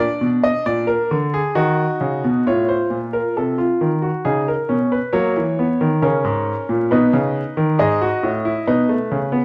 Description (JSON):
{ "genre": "classical, baroque-style 3-part fugue for grand piano", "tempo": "68 BPM", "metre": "3/4", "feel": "straight", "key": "unclear", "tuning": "A4 = 440 Hz", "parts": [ { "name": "clear grand piano", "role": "solo", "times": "0.0-9.4 s", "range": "G#2 to D#5", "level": "-19 LUFS", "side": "equal", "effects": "none" } ], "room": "moderate stone room reverb, RT60 1.1 s", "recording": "dark, warm production, vinyl crackle", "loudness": "-19 LUFS", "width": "mono", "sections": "0.0-2.5 A section; 2.5-9.4 B section", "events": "none", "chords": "0.0 A#7; 1.6 D#m; 2.5 F7/A; 4.2 A#m/C#; 5.1 F#7 (rootless); 6.9 B; 7.8 G#m", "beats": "0.66 1.56 | 2.46 3.36 4.25 | 5.14 6.03 6.91 | 7.80 8.68" }